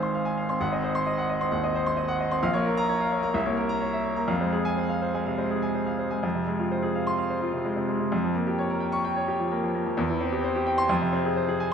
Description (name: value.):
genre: classical, virtuoso piano study.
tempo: 129 BPM.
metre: 4/4.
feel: rubato.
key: F minor.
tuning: A4 = 440 Hz.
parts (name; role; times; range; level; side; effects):
bright grand piano; solo; 0.0-11.7 s; Ab1 to Db6; -24 LUFS; equal; none.
room: wet scoring stage reverb, RT60 1.9 s.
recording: none.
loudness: -24 LUFS.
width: side -7 dB against mid.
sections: 0.0-6.2 A section; 6.2-11.7 A section.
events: none.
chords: 0.0 Fm/Ab; 0.6 Ab7; 2.4 Bbm; 3.3 C7b9; 4.3 Fm; 8.1 Gm7b5/F; 10.0 C/E; 10.9 Fm.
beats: 0.14 | 0.60 1.07 1.52 1.98 | 2.43 2.89 3.34 3.82 | 4.29 4.78 5.27 5.76 | 6.24 6.71 7.19 7.65 | 8.12 8.59 9.05 9.52 | 9.98 10.44 10.90 11.37.